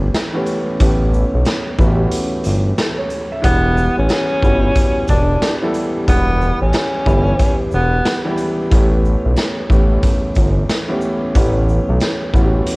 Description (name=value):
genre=hip hop, boom-bap hip-hop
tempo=91 BPM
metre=4/4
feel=swing 60% on 16ths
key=unclear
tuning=A4 = 440 Hz
part: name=dark upright piano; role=accompaniment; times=0.0-12.8 s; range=E3 to E5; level=-20 LUFS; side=equal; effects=high-pass filter, low-pass filter, cassette tape
part: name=smooth gliding synth bass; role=bass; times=0.0-12.6 s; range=E1 to B1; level=-16 LUFS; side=equal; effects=none
part: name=raw garage drum kit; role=drums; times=0.1-12.8 s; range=hi-hat, kick drum, shaker, snare drum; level=-18 LUFS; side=equal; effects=cassette tape
part: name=breathy tenor saxophone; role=melody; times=3.4-8.2 s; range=B3 to D4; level=-19 LUFS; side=equal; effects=high-pass filter, low-pass filter, cassette tape, tape echo
room=little or no reverb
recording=home recording on cassette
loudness=-13 LUFS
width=side -25 dB against mid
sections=0.0-12.8 A section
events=none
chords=0.0 A7; 3.4 Em; 8.7 A7